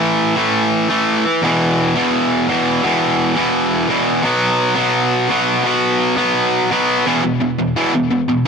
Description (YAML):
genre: punk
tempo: 171 BPM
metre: 4/4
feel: straight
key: unclear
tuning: A4 = 440 Hz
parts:
  - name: distorted electric guitar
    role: solo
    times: 0.0-8.5 s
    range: E2 to B3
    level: -14 LUFS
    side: equal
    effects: overdrive, ping-pong delay
room: light reverb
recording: none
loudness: -14 LUFS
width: side -5 dB against mid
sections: 0.0-7.1 A section; 7.1-8.5 B section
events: half time 0.0-7.1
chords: 0.0 A5; 1.4 E5; 4.2 B5; 7.1 E5